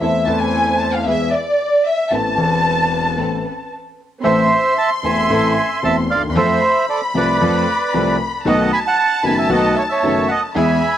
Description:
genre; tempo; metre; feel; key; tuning
tango; 114 BPM; 4/4; rubato; A harmonic minor; A4 = 440 Hz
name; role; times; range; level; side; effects
warm studio violin section; second line; 0.0-11.0 s; D5 to C6; -20 LUFS; left 1 dB; none
warm concert grand piano; accompaniment; 0.0-10.8 s; E1 to A4; -19 LUFS; left 2 dB; none
warm studio string section; stabs; 0.0-10.8 s; B3 to C5; -26 LUFS; right 4 dB; analog delay
bandoneon; melody; 4.2-11.0 s; A4 to B5; -17 LUFS; right 3 dB; plate reverb
room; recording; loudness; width
wet small room reverb, RT60 0.6 s; none; -14 LUFS; side -11 dB against mid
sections
0.0-4.2 A section; 4.2-11.0 A section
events
violin section solo 0.0-4.2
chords
0.0 Am/E; 1.1 E; 2.1 Amadd9; 4.2 Am; 6.4 F; 8.5 B7

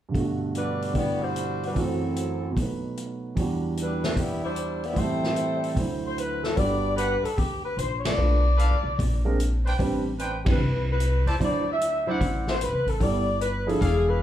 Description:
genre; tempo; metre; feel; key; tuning
jazz, big band swing; 149 BPM; 4/4; swing 67% on 8ths; G major; A4 = 438 Hz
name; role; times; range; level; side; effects
warm concert grand piano; accompaniment; 0.1-13.8 s; D2 to D5; -28 LUFS; right 2 dB; none
swinging big-band drum kit; drums; 0.1-13.9 s; hi-hat, kick drum, ride cymbal, snare drum; -29 LUFS; equal; none
mellow saxophone section; melody; 0.6-14.2 s; F#3 to G5; -27 LUFS; left 2 dB; none
upright bass; bass; 6.6-14.2 s; E1 to E2; -25 LUFS; equal; none
clear trumpet section; stabs; 7.0-14.2 s; D4 to A5; -32 LUFS; equal; none
room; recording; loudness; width
moderate large studio reverb, RT60 0.9 s; heard from further back in the room; -23 LUFS; side -11 dB against mid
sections
0.1-6.6 A section; 6.6-14.2 B section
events
band accent 8.0, 10.4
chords
0.1 Gmaj7; 1.7 F#m7b5; 2.6 B7; 3.4 Em7; 5.0 Am7; 5.8 D7; 6.6 Gmaj7; 8.2 Bm7b5; 9.0 Bb9; 9.8 Am11; 11.4 D9; 13.0 G69

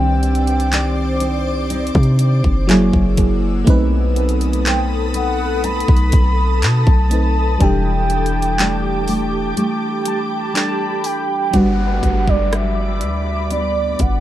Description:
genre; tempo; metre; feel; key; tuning
contemporary R&B; 61 BPM; 4/4; straight; G major; A4 = 442 Hz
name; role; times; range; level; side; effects
mellow horn-like synth lead; melody; 0.0-14.2 s; D5 to B5; -23 LUFS; right 1 dB; chorus, phaser, tape echo
FM electric piano; accompaniment; 0.0-14.2 s; Eb3 to B4; -23 LUFS; right 1 dB; chorus, tape echo
ethereal airy pad; sustained chords; 0.0-14.2 s; G4 to E6; -25 LUFS; left 1 dB; ensemble chorus, built-in reverb, sidechain pumping
nylon-string guitar; arpeggios; 0.0-14.2 s; E3 to D5; -22 LUFS; equal; tape echo
warm 808-style bass; bass; 0.0-14.2 s; E1 to C3; -18 LUFS; equal; none
trap drum kit; drums; 0.2-14.2 s; handclaps, hi-hat, kick drum, rim click; -18 LUFS; equal; overdrive
downlifter; sound effects; 11.5-14.2 s; none; -30 LUFS; right 1 dB; none
room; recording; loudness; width
little or no reverb; echo-heavy mix; -14 LUFS; side -13 dB against mid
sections
0.0-11.5 A section; 11.5-14.2 B section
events
break 9.6-11.5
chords
0.0 Cmadd9; 2.7 F#9; 3.7 B7b9; 7.6 Em7; 11.5 Gmaj7

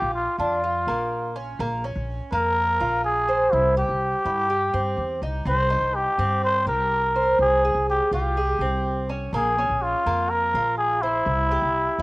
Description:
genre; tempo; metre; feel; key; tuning
latin, Cuban son and guajira; 124 BPM; 4/4; straight; unclear; A4 = 440 Hz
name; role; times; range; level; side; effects
trumpet with cup mute; melody; 0.0-12.0 s; E4 to C5; -22 LUFS; equal; cassette tape, tape echo
Cuban tres; arpeggios; 0.0-12.0 s; Bb3 to C5; -26 LUFS; right 1 dB; cassette tape, plate reverb
upright bass; bass; 0.0-12.0 s; Bb1 to G2; -28 LUFS; equal; none
room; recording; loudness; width
moderate booth ambience, RT60 0.3 s; home recording on cassette; -20 LUFS; side -21 dB against mid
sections
0.0-12.0 A section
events
none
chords
0.0 Bb; 1.6 Bbm7; 3.5 C; 5.5 Cm; 7.4 Fm/C; 9.3 Bbm7; 11.3 C

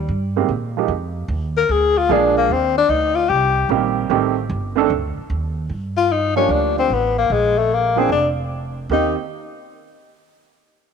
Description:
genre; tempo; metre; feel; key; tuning
jazz, small-group swing and bop; 150 BPM; 4/4; swing 66% on 8ths; Eb major; A4 = 439 Hz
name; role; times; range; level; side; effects
breathy tenor saxophone; melody; 0.0-9.2 s; G3 to Bb4; -17 LUFS; left 6 dB; none
upright bass; bass; 0.0-9.1 s; F1 to Bb2; -24 LUFS; right 2 dB; none
warm upright piano; accompaniment; 0.4-9.1 s; Eb3 to A4; -20 LUFS; right 14 dB; none
room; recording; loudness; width
moderate echo chamber reverb, RT60 2.4 s; 1960s-style stereo with parts hard left and right; -16 LUFS; side -6 dB against mid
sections
0.0-5.7 A section; 5.7-8.9 B section; 8.9-10.5 C section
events
none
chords
0.0 Abmaj9; 0.9 Ebsus2; 1.7 Bb7; 2.5 Eb6; 4.1 Am7b5; 4.9 N.C.; 5.7 Gm7; 7.3 Bb5; 8.9 Eb6

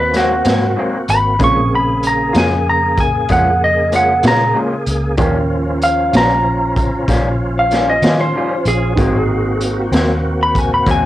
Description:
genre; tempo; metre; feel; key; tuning
slow blues; 63 BPM (dotted quarters); 12/8; straight; Ab mixolydian; A4 = 440 Hz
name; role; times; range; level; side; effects
lightly driven lead guitar; melody; 0.0-11.1 s; Gb4 to Db6; -15 LUFS; equal; cassette tape
warm grand piano; accompaniment; 0.0-11.1 s; Bb3 to G5; -24 LUFS; right 3 dB; none
bright tonewheel organ; sustained chords; 0.0-11.1 s; Db3 to Ab4; -21 LUFS; equal; slow rotary speaker, chorus vibrato
vintage muted fingered electric bass; bass; 0.0-11.1 s; Ab1 to Eb3; -19 LUFS; equal; none
electric guitar through a small old amp; accompaniment; 0.1-11.1 s; Ab2 to F4; -20 LUFS; left 2 dB; harmonic tremolo
raw garage drum kit; drums; 0.1-11.0 s; hi-hat, kick drum, snare drum; -19 LUFS; equal; cassette tape
room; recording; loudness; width
light reverb; home recording on cassette; -12 LUFS; side -14 dB against mid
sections
0.0-11.1 A section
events
lead electric guitar solo 0.0-11.1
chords
0.0 Ab9; 1.4 Bbm7; 5.2 Eb9; 9.0 Ab9

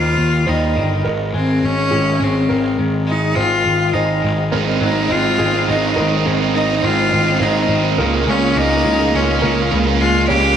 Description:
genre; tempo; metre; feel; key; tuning
post-rock; 104 BPM; 3/4; straight; unclear; A4 = 442 Hz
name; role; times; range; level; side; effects
bright cello; melody; 0.0-10.6 s; C4 to G4; -18 LUFS; left 1 dB; analog delay
felt-muted upright piano; arpeggios; 0.0-10.6 s; Ab4 to Db5; -27 LUFS; right 2 dB; analog delay
twangy electric guitar; arpeggios; 0.0-10.6 s; Ab2 to C4; -24 LUFS; left 4 dB; spring reverb, slapback echo, analog delay
fuzz picked electric bass; bass; 0.0-10.6 s; G1 to Eb2; -19 LUFS; equal; overdrive
crunchy overdriven guitar; riff; 4.5-10.6 s; Bb3 to F4; -19 LUFS; right 9 dB; slapback echo
room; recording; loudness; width
moderate lush hall reverb, RT60 2.1 s; big arena sound, small room ambience; -14 LUFS; side -8 dB against mid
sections
0.0-10.6 A section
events
build-up 0.0-10.6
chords
0.0 Ebadd9; 1.1 Ab; 4.5 Ab7; 8.0 Db6

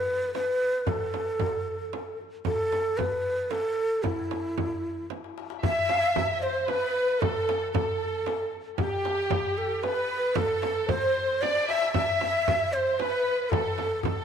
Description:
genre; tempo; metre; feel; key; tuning
Arabic maqam ensemble; 114 BPM; 3/4; straight; unclear; A4 = 445 Hz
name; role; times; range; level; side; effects
breathy mellow ney; melody; 0.0-14.2 s; E4 to E5; -27 LUFS; equal; none
darbuka; percussion; 0.3-14.2 s; none; -34 LUFS; left 6 dB; none
frame drum; percussion; 0.3-14.2 s; none; -34 LUFS; right 8 dB; none
dark symphonic violin section; second line; 5.6-14.2 s; G4 to E5; -30 LUFS; equal; none
room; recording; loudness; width
moderate plate reverb, RT60 2.6 s; 1960s-style stereo with parts hard left and right; -25 LUFS; side -8 dB against mid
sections
0.0-5.6 A section; 5.6-14.2 B section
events
drum fill 5.1-5.6, 11.4-11.9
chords
none

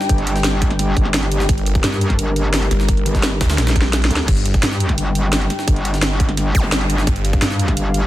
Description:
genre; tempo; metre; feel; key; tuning
dark technical drum and bass; 172 BPM; 4/4; straight; G minor; A4 = 440 Hz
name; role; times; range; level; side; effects
dark analog pad; sustained chords; 0.0-8.1 s; G3 to G5; -24 LUFS; left 1 dB; chorus, sidechain pumping
jungle sampler-style drum kit; drums; 0.0-8.0 s; hi-hat, snare drum; -27 LUFS; equal; high-pass filter on hats, small room ambience, high-pass filter on snare, high-pass filter on room
metallic wobble bass; bass; 0.1-8.1 s; G1 to G2; -19 LUFS; equal; chorus
drum and bass drum kit; drums; 0.1-8.0 s; crash cymbal, hi-hat, snare drum; -22 LUFS; equal; small room ambience
electronic kick drum; drums; 0.1-7.8 s; none; -17 LUFS; equal; small room ambience
snarling distorted saw bass; bass; 1.5-4.6, 7.1-7.4 s; G1 to D2; -19 LUFS; equal; distortion, overdrive, sidechain pumping
zap; sound effects; 6.5-6.6 s; none; -28 LUFS; equal; none
room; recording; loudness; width
digital ambience; dense, heavily limited modern master; -15 LUFS; side -15 dB against mid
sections
0.0-8.1 A section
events
drum fill 3.6-4.3; kick drops out 3.9-4.3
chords
0.0 G5

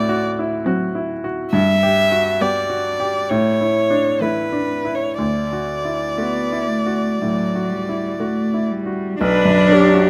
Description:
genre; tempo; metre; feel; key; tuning
classical, slow romantic movement for piano quartet; 59-70 BPM; 4/4; rubato; D major; A4 = 440 Hz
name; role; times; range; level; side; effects
clear violin; melody; 0.0-10.1 s; B4 to E5; -23 LUFS; equal; none
bright grand piano; accompaniment; 0.0-10.1 s; B1 to G4; -22 LUFS; equal; none
rich cello; second line; 0.6-10.1 s; E3 to D4; -23 LUFS; equal; none
rich viola; accompaniment; 0.7-10.1 s; A3 to B4; -23 LUFS; equal; none
room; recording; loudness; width
light reverb; close, detailed microphones; -19 LUFS; mono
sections
0.0-9.2 A section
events
none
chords
0.0 D7; 1.5 G; 3.3 A; 5.2 D; 9.2 Bm

